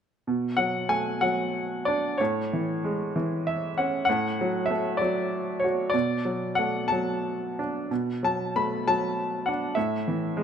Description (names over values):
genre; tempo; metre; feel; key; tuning
classical, lyrical solo piano; 63 BPM (dotted quarters); 6/8; uneven beats, rubato; B dorian; A4 = 436 Hz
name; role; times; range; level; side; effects
clear baby grand piano; solo; 0.3-10.4 s; A2 to B5; -24 LUFS; equal; none
room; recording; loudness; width
light reverb; none; -24 LUFS; side -8 dB against mid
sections
0.3-10.4 A section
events
grand piano fill 3.1-4.1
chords
0.3 Bm7; 2.2 Amaj7; 4.1 D/A; 5.9 Bm7; 9.8 A5